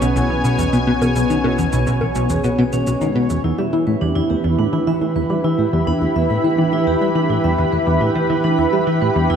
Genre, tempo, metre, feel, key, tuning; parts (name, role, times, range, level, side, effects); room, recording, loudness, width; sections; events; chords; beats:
ambient, sequencer-driven space music; 105 BPM; 4/4; straight; E dorian from 3.4 s; A4 = 440 Hz
lush unison pad; sustained chords; 0.0-9.4 s; B2 to B5; -20 LUFS; right 1 dB; chorus
vibraphone with medium hard mallets; arpeggios; 0.0-9.4 s; G#3 to E5; -23 LUFS; moving between left 1 dB and right 6 dB; auto-pan, analog delay
plucky analog bass; riff; 0.0-9.3 s; B1 to G3; -18 LUFS; equal; wide subtle chorus, vintage 12-bit sampler grit, analog delay
warm sub bass; bass; 0.0-3.4 s; B1; -29 LUFS; equal
cabasa and bongos; percussion; 0.0-3.4 s; -31 LUFS; equal; analog delay
bubbling stepped-filter texture; texture; 0.0-9.4 s; C#5 to F#5; -32 LUFS; left 1 dB; chorus, built-in reverb
wet cathedral reverb, RT60 5.5 s; in a vast, echoing space; -15 LUFS; side -7 dB against mid
0.0-3.4 A section; 3.4-9.4 B section
0.0 Bsus2; 3.4 Em
0.02 0.59 | 1.16 1.73 2.30 2.87 | 3.44 4.02 4.59 5.16 | 5.73 6.30 6.87 7.44 | 8.02 8.59 9.16